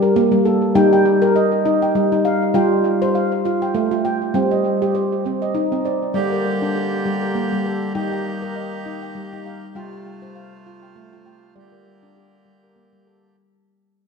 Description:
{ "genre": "world meditative, meditative tuned percussion", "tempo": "100 BPM", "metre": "3/4", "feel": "swing 56% on 16ths", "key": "G minor", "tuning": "A4 = 440 Hz", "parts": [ { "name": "handpan", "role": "arpeggios", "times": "0.0-13.5 s", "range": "G3 to G5", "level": "-17 LUFS", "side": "equal", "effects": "tape echo" }, { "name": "accordion", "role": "sustained chords", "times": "6.1-13.4 s", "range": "C3 to G4", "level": "-29 LUFS", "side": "right 4 dB", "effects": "none" } ], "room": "wet concert hall reverb, RT60 2.0 s", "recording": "none", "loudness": "-16 LUFS", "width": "side -5 dB against mid", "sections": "0.0-13.4 A section", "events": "fade-out 0.0-13.4", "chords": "0.0 Gm; 0.8 Eb/G; 2.5 F/G; 4.3 Cm/G; 6.1 Gm; 7.9 Eb; 9.8 F; 11.6 Gm" }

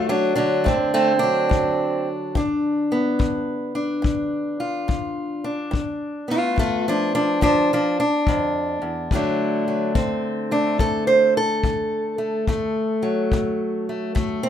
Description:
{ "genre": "acoustic country blues, solo or duo", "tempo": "71 BPM", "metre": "4/4", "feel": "swing 65% on 8ths", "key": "D mixolydian", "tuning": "A4 = 442 Hz", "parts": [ { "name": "fingerpicked steel-string acoustic guitar", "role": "melody", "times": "0.0-14.5 s", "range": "D2 to C5", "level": "-20 LUFS", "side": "equal", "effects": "none" }, { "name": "kick drum", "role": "drums", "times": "0.7-14.4 s", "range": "none", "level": "-24 LUFS", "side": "left 3 dB", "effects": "none" } ], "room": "light reverb", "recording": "minimal, uncompressed stereo recording", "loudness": "-19 LUFS", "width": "side -9 dB against mid", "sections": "0.0-14.5 A section", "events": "none", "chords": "0.0 D7; 2.4 G7; 9.1 D7" }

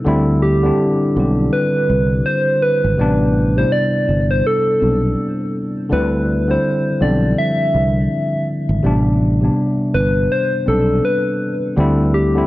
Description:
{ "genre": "lo-fi hip hop", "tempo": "82 BPM", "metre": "4/4", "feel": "swing 59% on 16ths", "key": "A minor", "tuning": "A4 = 440 Hz", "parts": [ { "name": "tine electric piano", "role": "accompaniment", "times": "0.0-12.5 s", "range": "C3 to G4", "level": "-18 LUFS", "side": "equal", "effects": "low-pass filter" }, { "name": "fretless electric bass", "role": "bass", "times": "0.1-12.4 s", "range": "G1 to D2", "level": "-17 LUFS", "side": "equal", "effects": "none" }, { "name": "soft struck synth lead", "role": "melody", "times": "0.4-12.5 s", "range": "G4 to E5", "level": "-19 LUFS", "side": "equal", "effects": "chorus, low-pass filter, analog delay" } ], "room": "light reverb, digital ambience", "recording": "cassette tape", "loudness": "-14 LUFS", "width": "side -17 dB against mid", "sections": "0.0-12.5 A section", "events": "none", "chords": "0.1 D9sus4; 3.0 Am11; 5.9 D9sus4; 8.8 Am11; 11.8 D9sus4" }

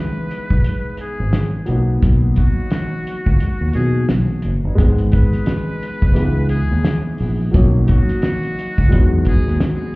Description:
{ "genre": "hip hop, boom-bap hip-hop", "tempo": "87 BPM", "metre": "4/4", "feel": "swing 58% on 16ths", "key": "unclear", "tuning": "A4 = 440 Hz", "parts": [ { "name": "trumpet with metal mute", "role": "melody", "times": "0.0-9.6 s", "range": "F#4 to B4", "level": "-29 LUFS", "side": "equal", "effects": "high-pass filter, low-pass filter, digital delay" }, { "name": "dark baby grand piano", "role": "accompaniment", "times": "0.0-10.0 s", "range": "E3 to D#4", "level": "-23 LUFS", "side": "left 1 dB", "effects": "cassette tape, high-pass filter, low-pass filter" }, { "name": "cloth-damped thuddy drum kit", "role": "drums", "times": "0.3-9.8 s", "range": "hi-hat, kick drum, snare drum", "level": "-18 LUFS", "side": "equal", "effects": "none" }, { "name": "fingered electric bass", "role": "bass", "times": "0.5-9.6 s", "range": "F#1 to B2", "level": "-16 LUFS", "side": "equal", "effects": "none" } ], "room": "light reverb, small room ambience", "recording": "heard muffled through a wall, club reverb, vinyl crackle, EQ", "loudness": "-14 LUFS", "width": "side -23 dB against mid", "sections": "0.0-4.8 A section; 4.8-10.0 B section", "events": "kick muted 3.4-4.8", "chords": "0.0 C#m9 (rootless); 1.7 Bmaj7; 4.8 G#m; 6.2 C#m7; 7.5 Bmaj7; 8.9 Emaj7" }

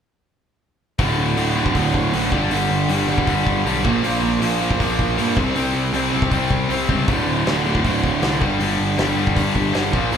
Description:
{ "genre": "punk rock", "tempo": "158 BPM", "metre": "4/4", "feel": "straight", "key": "D minor", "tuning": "A4 = 440 Hz", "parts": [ { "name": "biting overdriven guitar", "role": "riff", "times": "1.0-10.2 s", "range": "D2 to C4", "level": "-22 LUFS", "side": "left 8 dB", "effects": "none" }, { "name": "cranked stack guitar", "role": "riff", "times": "1.0-10.2 s", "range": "D2 to C4", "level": "-21 LUFS", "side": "right 5 dB", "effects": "overdrive" }, { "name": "fuzz picked electric bass", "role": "bass", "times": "1.0-10.2 s", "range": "D1 to G2", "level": "-24 LUFS", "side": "equal", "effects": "overdrive" }, { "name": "loose indie drum kit", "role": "drums", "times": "1.0-10.2 s", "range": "hi-hat, kick drum, snare drum", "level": "-24 LUFS", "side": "equal", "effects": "none" } ], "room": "moderate large studio reverb, RT60 0.9 s", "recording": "band playing live in one room", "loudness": "-17 LUFS", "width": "side -8 dB against mid", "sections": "1.0-10.2 A section", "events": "none", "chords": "1.0 D5; 2.3 G5; 3.8 Bb5; 5.4 C5; 7.1 D5; 8.4 G5" }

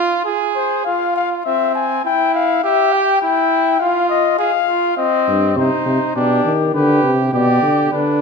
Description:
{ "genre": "classical, imitative canzona for brass ensemble", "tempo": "102 BPM", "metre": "4/4", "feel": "straight", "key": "unclear", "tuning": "A4 = 440 Hz", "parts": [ { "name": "warm trumpet", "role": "second line", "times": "0.0-8.2 s", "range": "C4 to Ab4", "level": "-18 LUFS", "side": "right 6 dB", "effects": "none" }, { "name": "mellow trumpet", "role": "melody", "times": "0.6-8.2 s", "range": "G4 to Ab5", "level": "-17 LUFS", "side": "left 10 dB", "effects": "none" }, { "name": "dark bass trombone", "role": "bass", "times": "5.3-8.2 s", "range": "G2 to Eb3", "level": "-16 LUFS", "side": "left 1 dB", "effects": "none" } ], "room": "wet recital hall reverb, RT60 1.7 s", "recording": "minimal, uncompressed stereo recording", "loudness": "-14 LUFS", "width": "side -4 dB against mid", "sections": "0.3-8.2 A section", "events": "none", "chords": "0.3 Fm/Ab; 1.5 C; 2.6 Em; 3.8 N.C.; 5.0 Cm; 6.2 G/B" }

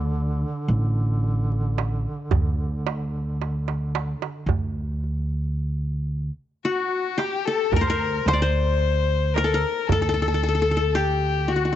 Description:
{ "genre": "Arabic maqam ensemble", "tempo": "111 BPM (eighths)", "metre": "10/8", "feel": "straight", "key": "D maqam hijaz from 4.5 s", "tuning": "A4 = 440 Hz", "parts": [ { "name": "qanun", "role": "melody", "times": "0.0-11.8 s", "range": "D4 to D5", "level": "-25 LUFS", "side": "left 2 dB", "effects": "none" }, { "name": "upright bass", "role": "bass", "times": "0.0-11.7 s", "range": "A1 to D2", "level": "-24 LUFS", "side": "right 1 dB", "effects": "none" }, { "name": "warm duduk", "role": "drone", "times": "0.0-4.6 s", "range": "D3", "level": "-32 LUFS", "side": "right 2 dB", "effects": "stereo widening" }, { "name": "darbuka", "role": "percussion", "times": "0.7-10.6 s", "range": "none", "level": "-27 LUFS", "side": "right 5 dB", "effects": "none" }, { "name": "rich violin", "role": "second line", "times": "6.7-11.8 s", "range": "F#4 to C5", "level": "-26 LUFS", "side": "left 10 dB", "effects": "none" } ], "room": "light reverb, studio reverb", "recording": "1960s-style stereo, nothing above 7.9 kHz", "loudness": "-21 LUFS", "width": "side -11 dB against mid", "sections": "0.0-4.5 A section; 4.5-11.8 B section", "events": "drum fill 3.4-4.5", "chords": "none" }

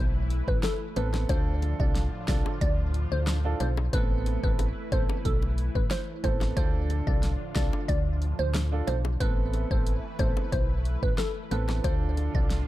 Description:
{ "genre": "dancehall", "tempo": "91 BPM", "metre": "4/4", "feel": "straight", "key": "A minor", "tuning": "A4 = 440 Hz", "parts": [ { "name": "glassy wavetable pluck", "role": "melody", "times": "0.0-12.4 s", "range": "A4 to D5", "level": "-34 LUFS", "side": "equal", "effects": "chorus, digital delay" }, { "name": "lush unison pad", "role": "sustained chords", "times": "0.0-12.7 s", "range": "A2 to B4", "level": "-38 LUFS", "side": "equal", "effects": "chorus, phaser, sidechain pumping" }, { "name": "solid FM bass", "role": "bass", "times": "0.0-12.6 s", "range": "A1 to D2", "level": "-28 LUFS", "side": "equal", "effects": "none" }, { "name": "downlifter", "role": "sound effects", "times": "0.0-1.3 s", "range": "none", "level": "-56 LUFS", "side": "equal", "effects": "none" }, { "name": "deep house drum kit", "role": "drums", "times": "0.3-12.7 s", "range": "hi-hat, kick drum, rim click, snare drum", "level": "-28 LUFS", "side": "equal", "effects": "none" }, { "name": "bongos", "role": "percussion", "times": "0.6-12.3 s", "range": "none", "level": "-40 LUFS", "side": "left 8 dB", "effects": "none" }, { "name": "warm baby grand piano", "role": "accompaniment", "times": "1.0-12.6 s", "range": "B3 to A4", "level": "-35 LUFS", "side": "right 5 dB", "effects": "sidechain pumping" } ], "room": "digital ambience", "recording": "dark, warm production", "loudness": "-25 LUFS", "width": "side -15 dB against mid", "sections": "0.0-12.7 A section", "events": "none", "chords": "0.0 Amadd9; 1.3 Dm; 3.9 Amadd9; 6.6 Dm; 9.2 Amadd9; 11.8 Dm" }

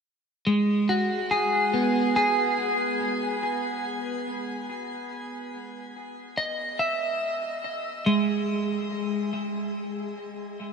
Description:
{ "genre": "ambient", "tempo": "71 BPM", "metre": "3/4", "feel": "straight", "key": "unclear", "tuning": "A4 = 439 Hz", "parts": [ { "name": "clean electric guitar", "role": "solo", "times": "0.5-10.6 s", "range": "G#3 to E5", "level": "-24 LUFS", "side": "equal", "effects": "lush chorus, tape echo" } ], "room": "wet shimmer reverb, RT60 8.2 s", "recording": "dark, warm production", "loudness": "-24 LUFS", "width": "side -6 dB against mid", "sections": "0.0-10.7 A section", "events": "none", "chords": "0.0 G#m7; 4.3 Emaj7/G#; 9.3 N.C." }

